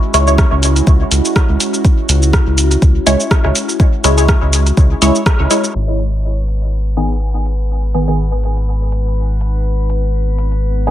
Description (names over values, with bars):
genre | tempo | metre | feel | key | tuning
dub techno | 123 BPM | 4/4 | swing 55% on 16ths | G# minor | A4 = 440 Hz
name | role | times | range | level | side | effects
warbly tape-like pad | sustained chords | 0.0-10.9 s | G#3 to B4 | -23 LUFS | right 1 dB | chorus, built-in reverb, phaser, sidechain pumping
filtered dub chord stab | stabs | 0.1-10.9 s | D#3 to C#5 | -17 LUFS | equal | chorus, phaser, sidechain pumping, dub echo
round analog bass | bass | 0.1-10.9 s | G#1 to C#2 | -14 LUFS | equal | sidechain pumping
soft vintage rhythm box | drums | 0.1-10.9 s | cabasa, hi-hat, rim click | -18 LUFS | right 1 dB | dub echo
electronic kick drum | drums | 0.4-5.4 s | none | -11 LUFS | equal | overdrive
drifting glass-harmonics texture | texture | 6.3-10.9 s | B3 to B4 | -28 LUFS | left 8 dB | chorus, built-in reverb, sidechain pumping
room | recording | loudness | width
light reverb, digital ambience | low-pass filter | -11 LUFS | side -12 dB against mid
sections
0.0-5.8 A section; 5.8-10.9 B section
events
band accent 5.3; filter sweep on ambient pad 5.8-10.9; filter sweep 5.8-10.9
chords
0.0 C#m; 5.8 G#m